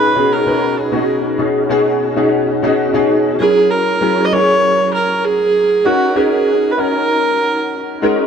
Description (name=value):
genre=pop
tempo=97 BPM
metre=4/4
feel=straight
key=unclear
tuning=A4 = 443 Hz
part: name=warm viola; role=melody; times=0.0-8.0 s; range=F#4 to D#5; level=-14 LUFS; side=right 2 dB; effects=none
part: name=warm concert grand piano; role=accompaniment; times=0.0-8.3 s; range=B2 to B4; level=-15 LUFS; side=left 1 dB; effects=ensemble chorus
room=moderate plate reverb, RT60 2.4 s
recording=none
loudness=-12 LUFS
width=side -7 dB against mid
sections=0.0-3.4 A section; 3.4-8.3 B section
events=none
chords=0.0 B69; 3.4 F#9; 5.9 D#m7